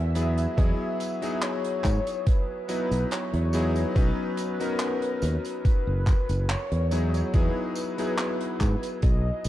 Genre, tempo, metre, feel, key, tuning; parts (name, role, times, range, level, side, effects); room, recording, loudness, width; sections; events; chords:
vaporwave; 71 BPM; 4/4; straight; A4 = 440 Hz
warm velvety synth lead; melody; 0.0-9.5 s; B4 to E5; -33 LUFS; left 1 dB; chorus, tape echo
bright electric grand piano; accompaniment; 0.0-9.5 s; F#3 to B4; -30 LUFS; left 1 dB; analog chorus
fingered electric bass; bass; 0.0-9.5 s; F#1 to G#2; -25 LUFS; equal; tube saturation
modern studio drum kit; drums; 0.2-9.5 s; handclaps, hi-hat, tambourine; -35 LUFS; equal
electronic kick drum; drums; 0.6-9.2 s; -22 LUFS; equal
light reverb; dark, warm production; -23 LUFS; side -14 dB against mid
0.0-9.5 A section
0.2 Emaj7; 4.0 Bmaj9; 6.9 Emaj7